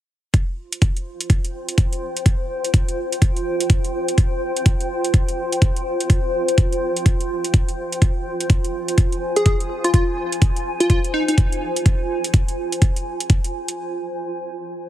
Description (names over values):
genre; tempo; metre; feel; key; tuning
bass house; 125 BPM; 4/4; swing 61% on 16ths; F minor; A4 = 439 Hz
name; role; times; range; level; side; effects
electronic hi-hat; drums; 0.3-13.8 s; none; -27 LUFS; right 2 dB; none
electronic kick drum; drums; 0.3-13.4 s; none; -16 LUFS; equal; none
granular cloud pad; texture; 1.2-13.8 s; F4 to Ab5; -25 LUFS; equal; built-in reverb, sidechain pumping
plucky unison lead; melody; 9.4-11.3 s; Eb4 to Ab4; -21 LUFS; left 1 dB; dub echo
room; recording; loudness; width
light reverb; heavily compressed radio sound, multiband compression; -18 LUFS; side -13 dB against mid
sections
0.3-14.9 A section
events
break 13.8-14.9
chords
0.3 Fmadd9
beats
| 0.34 0.82 1.30 1.78 | 2.26 2.74 3.22 3.70 | 4.18 4.66 5.14 5.62 | 6.10 6.58 7.06 7.54 | 8.02 8.50 8.98 9.46 | 9.94 10.42 10.90 11.38 | 11.86 12.34 12.82 13.30 | 13.78